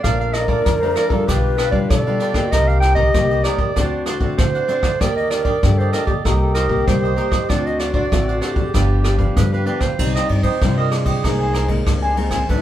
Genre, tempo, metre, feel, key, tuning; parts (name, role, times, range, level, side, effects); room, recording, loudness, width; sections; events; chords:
samba and choro; 96 BPM; 4/4; straight; G minor; A4 = 437 Hz
warm clarinet; melody; 0.0-12.6 s; G4 to G5; -23 LUFS; right 2 dB
mellow long shakuhachi; second line; 0.0-12.6 s; C4 to B4; -25 LUFS; left 2 dB
cavaquinho; accompaniment; 0.0-12.6 s; D4 to Bb5; -26 LUFS; right 2 dB
nylon-string guitar; accompaniment; 0.0-12.6 s; G2 to G4; -25 LUFS; left 2 dB
upright bass; bass; 0.0-12.6 s; G1 to D3; -20 LUFS; equal
jazz brush drum kit; drums; 0.0-12.6 s; crash cymbal, hi-hat, kick drum, ride cymbal, rim click; -21 LUFS; equal
moderate studio ambience, RT60 0.5 s; band playing live in one room; -15 LUFS; side -12 dB against mid
0.0-10.0 A section; 10.0-12.6 B section
0.0 Bbmaj7; 1.3 G7/B; 2.5 Cm7; 3.8 D7; 5.0 Ebmaj7; 6.3 Cm7; 7.5 D7; 8.7 G7; 10.0 Cm; 11.2 Abadd9/C